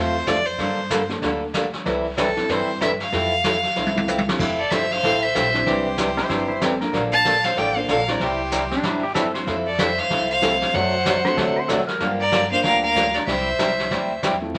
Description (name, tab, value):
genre	country, western swing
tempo	189 BPM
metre	4/4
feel	swing 61% on 8ths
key	F major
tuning	A4 = 440 Hz
part	clear fiddle	melody	0.0-14.2 s	A4 to A5	-25 LUFS	equal	none
part	dark upright piano	accompaniment	0.0-14.6 s	G3 to C5	-32 LUFS	equal	none
part	picked old ladder-braced acoustic guitar	accompaniment	0.0-14.6 s	C3 to A4	-27 LUFS	equal	none
part	upright bass	bass	0.0-14.6 s	F1 to D3	-35 LUFS	equal	none
part	vintage brush drum kit	drums	0.3-14.6 s	brushed snare drum, crash cymbal, hi-hat, kick drum, snare drum, toms	-28 LUFS	equal	none
part	clear fiddle	second line	4.6-14.2 s	G4 to F5	-29 LUFS	equal	none
part	clean lap steel guitar	second line	6.2-12.1 s	C4 to C5	-27 LUFS	equal	none
room	wet studio reverb, RT60 0.6 s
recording	vinyl crackle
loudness	-21 LUFS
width	mono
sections	0.0-4.4 A section; 4.4-14.5 B section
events	drum fill 3.8-4.4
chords	0.0 F; 0.6 Gmadd9; 1.9 C6; 3.1 Fmaj7; 5.7 Cadd9; 6.9 Bbmaj7; 8.2 C; 9.5 Fmaj7; 10.7 D7/F#; 12.0 Gm7; 13.3 C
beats	0.27 | 0.59 0.91 1.22 1.54 | 1.86 2.18 2.49 2.81 | 3.13 3.44 3.76 4.08 | 4.40 4.71 5.03 5.35 | 5.67 5.98 6.30 6.62 | 6.93 7.25 7.57 7.88 | 8.20 8.52 8.84 9.15 | 9.47 9.79 10.11 10.42 | 10.74 11.06 11.37 11.69 | 12.01 12.33 12.64 12.96 | 13.28 13.60 13.91 14.23 | 14.55